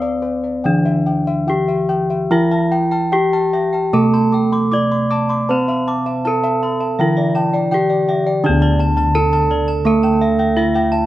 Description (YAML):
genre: Javanese gamelan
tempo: 72-85 BPM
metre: 4/4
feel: straight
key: D slendro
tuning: A4 = 439 Hz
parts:
  - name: gamelan-type bronze metallophone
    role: melody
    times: 0.0-11.1 s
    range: C4-40c to D5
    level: -20 LUFS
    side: left 1 dB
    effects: slapback echo
  - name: gamelan-type bronze metallophone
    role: accompaniment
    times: 0.0-11.1 s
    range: D3 to C4-40c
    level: -20 LUFS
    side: right 2 dB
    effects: none
  - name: gamelan-type bossed gongs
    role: arpeggios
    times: 0.0-11.1 s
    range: C5-40c to D6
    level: -22 LUFS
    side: left 2 dB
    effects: slapback echo
  - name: gamelan-type bossed gongs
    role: bass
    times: 0.0-11.1 s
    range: D2 to C5-40c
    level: -22 LUFS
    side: left 1 dB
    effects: none
  - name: gamelan-type bronze metallophone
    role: arpeggios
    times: 2.3-11.1 s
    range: D5 to D6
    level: -23 LUFS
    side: right 2 dB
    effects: slapback echo
room: light reverb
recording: recorded outdoors, with no room sound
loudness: -14 LUFS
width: side -15 dB against mid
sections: 0.0-8.4 A section; 8.4-11.1 B section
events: none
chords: none